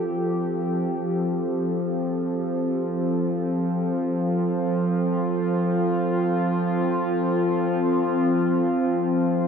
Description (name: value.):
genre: ambient.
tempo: free time.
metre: none.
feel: none.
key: unclear.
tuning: A4 = 440 Hz.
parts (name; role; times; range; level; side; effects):
warbly tape-like pad; solo; 0.0-9.5 s; F3 to A4; -21 LUFS; equal; chorus, built-in reverb, ping-pong delay.
room: wet lush hall reverb, RT60 3.0 s.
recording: dark, warm production.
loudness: -21 LUFS.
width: side -6 dB against mid.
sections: 0.0-9.5 A section.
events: none.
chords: 0.0 Dm7/F (rootless).